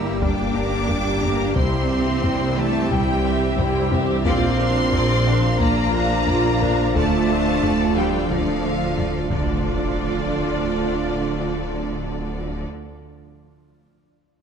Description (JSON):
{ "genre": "cinematic, hybrid orchestral and electronic film score", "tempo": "89 BPM", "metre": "4/4", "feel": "straight", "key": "D minor", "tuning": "A4 = 440 Hz", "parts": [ { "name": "rich symphonic violin section", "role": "melody", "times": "0.0-12.7 s", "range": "D5 to E6", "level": "-29 LUFS", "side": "left 3 dB", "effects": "none" }, { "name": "rich chamber violin section", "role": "second line", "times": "0.0-12.6 s", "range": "F4 to Bb5", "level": "-30 LUFS", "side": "left 4 dB", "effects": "none" }, { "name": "rich studio viola section", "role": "accompaniment", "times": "0.0-12.7 s", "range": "G3 to A4", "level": "-29 LUFS", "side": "right 2 dB", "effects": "none" }, { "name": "evolving wavetable pad", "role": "sustained chords", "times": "0.0-12.7 s", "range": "E3 to E5", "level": "-29 LUFS", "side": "equal", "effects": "chorus, built-in reverb" }, { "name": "mellow French horn section", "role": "sustained chords", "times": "0.0-12.6 s", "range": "Bb3 to G4", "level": "-27 LUFS", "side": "left 3 dB", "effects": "none" }, { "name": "warm trombone section", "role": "sustained chords", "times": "0.0-12.7 s", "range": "G2 to G3", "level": "-31 LUFS", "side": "right 3 dB", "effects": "none" }, { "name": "warbly dusty pluck", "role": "arpeggios", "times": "0.0-9.2 s", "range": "C3 to Bb4", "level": "-32 LUFS", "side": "left 4 dB", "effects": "none" }, { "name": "clear symphonic double bass section", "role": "bass", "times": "0.0-12.7 s", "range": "G1 to D2", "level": "-26 LUFS", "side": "right 3 dB", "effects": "none" }, { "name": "rich symphonic cello section", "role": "bass", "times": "0.0-12.7 s", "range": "D3 to E4", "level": "-27 LUFS", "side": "right 4 dB", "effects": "none" }, { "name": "wide detuned saw bass", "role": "bass", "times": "0.0-12.7 s", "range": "D1 to C2", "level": "-30 LUFS", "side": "equal", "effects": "chorus" }, { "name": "sub drop and impact", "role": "sound effects", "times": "0.0-1.6, 9.3-12.7 s", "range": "none", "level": "-32 LUFS", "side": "equal", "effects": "none" }, { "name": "warm grand piano", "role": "texture", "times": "0.0-7.0 s", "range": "E4 to F5", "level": "-35 LUFS", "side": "left 2 dB", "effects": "none" }, { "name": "taiko ensemble", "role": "drums", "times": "0.2-10.6 s", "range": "none", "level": "-27 LUFS", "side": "equal", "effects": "none" } ], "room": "moderate scoring stage reverb, RT60 2.2 s", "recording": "dark, warm production", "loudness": "-18 LUFS", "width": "side -7 dB against mid", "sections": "0.0-9.7 A section; 9.7-12.3 B section", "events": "impact 0.0-1.6, 9.7-12.3", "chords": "0.0 Gm; 1.6 C; 4.3 Bb; 7.0 Dm" }